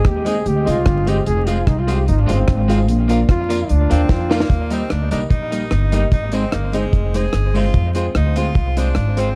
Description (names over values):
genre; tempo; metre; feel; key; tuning
ska; 148 BPM; 4/4; straight; Eb major; A4 = 439 Hz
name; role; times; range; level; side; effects
bright trombone; melody; 0.0-4.5 s; C4 to Ab4; -25 LUFS; equal; tape echo
deep reggae drum kit; drums; 0.0-9.3 s; hi-hat, kick drum, rim click, snare drum; -21 LUFS; equal; none
upright bass; bass; 0.1-9.3 s; F1 to F2; -20 LUFS; equal; none
clean electric guitar; accompaniment; 0.2-9.3 s; G3 to F4; -28 LUFS; equal; spring reverb, tape echo
clear upright piano; stabs; 0.2-9.3 s; C4 to F5; -29 LUFS; equal; tape echo
tambourine; percussion; 0.3-9.3 s; none; -45 LUFS; equal; none
edgy tenor saxophone; melody; 3.9-9.4 s; Ab3 to Ab4; -29 LUFS; equal; tape echo
room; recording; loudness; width
light reverb; dark, warm production, vinyl crackle; -17 LUFS; mono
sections
0.0-4.5 A section; 4.5-9.4 B section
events
trombone solo 0.0-4.5; drum fill 4.1-4.5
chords
0.0 Ab; 1.3 Fm; 2.9 Bb; 4.5 Eb; 6.1 Ab; 7.7 Fm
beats
0.05 0.45 0.86 | 1.26 1.67 2.07 2.48 | 2.88 3.29 3.69 4.09 | 4.50 4.91 5.31 5.71 | 6.12 6.53 6.93 7.34 | 7.74 8.15 8.55 8.96